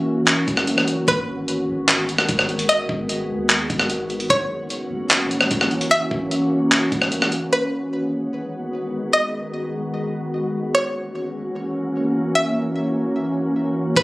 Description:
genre	hip hop, atmospheric cloud-rap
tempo	149 BPM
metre	4/4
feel	half-time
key	G# minor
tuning	A4 = 440 Hz
part	string-like resonator pluck	melody	0.0-14.0 s	B4 to E5	-20 LUFS	equal	chorus, tape echo
part	glassy FM pad	sustained chords	0.0-14.0 s	D#3 to F#4	-22 LUFS	equal	ensemble chorus, built-in reverb, sidechain pumping
part	soft 808-style bass	bass	0.0-7.5, 14.0 s	E1 to D#2	-34 LUFS	equal	none
part	breakbeat sampler-style drum kit	drums	0.3-7.4, 14.0 s	handclaps, hi-hat, kick drum, rim click	-18 LUFS	equal	vintage 12-bit sampler grit
room	moderate digital room reverb, RT60 0.8 s, digital ambience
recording	recorded on a phone in the room, club reverb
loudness	-18 LUFS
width	side -21 dB against mid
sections	0.0-7.5 A section; 7.5-14.0 B section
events	none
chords	0.0 F#7; 1.1 G#m7; 4.3 F#7; 7.5 G#m7; 10.7 F#7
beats	0.27 0.68 | 1.08 1.48 1.88 2.29 | 2.69 3.09 3.50 3.90 | 4.30 4.70 5.11 5.51 | 5.91 6.31 6.72 7.12 | 7.52 7.92 8.33 8.73 | 9.13 9.54 9.94 10.34 | 10.74 11.15 11.55 11.95 | 12.35 12.76 13.16 13.56 | 13.96

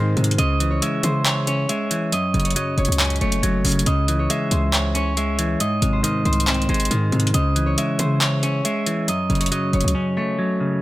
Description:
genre	hip hop, trap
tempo	138 BPM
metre	4/4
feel	half-time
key	C# harmonic minor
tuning	A4 = 441 Hz
part	Celtic harp	melody	0.0-10.8 s	B#4 to E5	-26 LUFS	equal	low-pass filter
part	semi-hollow electric guitar	accompaniment	0.0-10.8 s	F#2 to C#5	-22 LUFS	equal	low-pass filter
part	hard-hitting 808-style bass	bass	0.0-9.9 s	F#1 to C#3	-22 LUFS	equal	none
part	booming analog drum machine	drums	0.2-9.9 s	handclaps, hi-hat	-23 LUFS	equal	none
room	digital ambience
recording	none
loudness	-18 LUFS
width	side -17 dB against mid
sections	0.0-10.8 A section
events	none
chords	0.4 C#m; 2.1 F#m; 3.9 C#m; 5.6 G#; 7.3 C#m; 9.1 F#m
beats	| 0.39 0.82 1.25 1.69 | 2.12 2.56 2.99 3.43 | 3.86 4.30 4.73 5.17 | 5.60 6.04 6.47 6.91 | 7.34 7.78 8.21 8.65 | 9.08 9.52 9.95 10.38

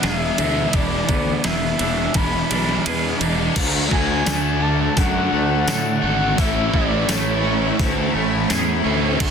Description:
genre	rock, shoegaze and dream pop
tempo	85 BPM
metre	4/4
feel	straight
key	A major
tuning	A4 = 438 Hz
part	reedy FM lead	melody	0.0-7.8 s	C#5 to B5	-25 LUFS	left 3 dB	chorus, slapback echo
part	string machine, full ensemble	sustained chords	0.0-9.3 s	A3 to C#6	-32 LUFS	equal	none
part	twangy electric guitar	arpeggios	0.0-9.3 s	E3 to A4	-29 LUFS	right 8 dB	analog chorus, slapback echo
part	crunchy overdriven guitar	riff	0.0-9.3 s	E2 to F#4	-25 LUFS	right 12 dB	reverse reverb
part	overdriven electric guitar	riff	0.0-9.3 s	E2 to F#4	-25 LUFS	left 11 dB	analog chorus
part	overdriven electric guitar	riff	0.0-9.3 s	E2 to D4	-27 LUFS	equal	none
part	fuzz fingered electric bass	bass	0.0-9.3 s	E1 to A2	-24 LUFS	equal	overdrive
part	detuned 8-bit digital drum machine	drums	0.0-9.3 s	crash cymbal, hi-hat, kick drum, ride cymbal, snare drum	-23 LUFS	equal	none
part	tambourine	percussion	4.3-8.7 s	none	-33 LUFS	left 11 dB	none
room	light reverb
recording	dense, heavily limited modern master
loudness	-17 LUFS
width	side -6 dB against mid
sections	0.0-3.6 A section; 3.6-9.3 A section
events	kick and snare drop out 2.9-3.6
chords	0.0 E7; 3.6 Dmaj7; 6.4 Amaj7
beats	0.03 | 0.74 1.45 2.15 2.86 | 3.57 4.27 4.97 5.68 | 6.38 7.09 7.79 8.49 | 9.20

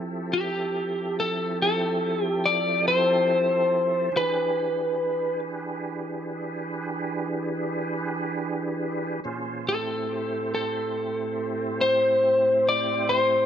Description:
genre	blues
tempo	47 BPM (dotted quarters)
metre	12/8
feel	straight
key	A minor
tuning	A4 = 442 Hz
part	tonewheel organ	sustained chords	0.0-13.5 s	A2 to C5	-29 LUFS	right 2 dB	slow rotary speaker, chorus vibrato
part	lightly driven lead guitar	melody	0.3-13.5 s	G4 to D5	-22 LUFS	left 1 dB	none
room	light reverb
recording	none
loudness	-23 LUFS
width	side -9 dB against mid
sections	0.0-13.5 A section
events	none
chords	0.0 Fmaj7; 4.1 E7#9; 9.2 Am7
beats	0.30 1.58 2.86 | 4.14 5.41 6.69 7.97 | 9.25 10.53 11.80 13.08

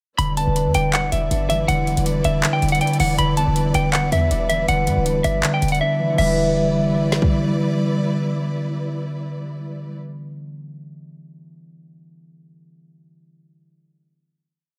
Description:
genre	hip hop, trap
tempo	160 BPM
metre	4/4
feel	half-time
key	E minor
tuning	A4 = 440 Hz
part	semi-hollow electric guitar	melody	0.2-7.3 s	E5 to B5	-24 LUFS	equal	vibrato effect, delay
part	concert harp	accompaniment	0.2-10.6 s	D3 to D4	-24 LUFS	equal	none
part	warm symphonic string section	sustained chords	0.2-9.9 s	G3 to D5	-31 LUFS	equal	none
part	short 808-style bass	bass	0.2-7.6 s	D1 to G2	-26 LUFS	equal	none
part	trap drum kit	drums	0.2-7.3 s	crash cymbal, handclaps, hi-hat, kick drum, snare drum	-27 LUFS	equal	none
room	light reverb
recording	none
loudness	-20 LUFS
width	mono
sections	0.2-6.2 hook; 6.2-9.2 final chord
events	drums muted 5.8-6.2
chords	0.2 Em7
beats	| 0.18 0.56 0.93 1.31 | 1.68 2.06 2.43 2.81 | 3.18 3.56 3.93 4.31 | 4.68 5.06 5.43 5.81 | 6.18 6.56 6.93 7.31 | 7.68 8.06 8.43 8.81

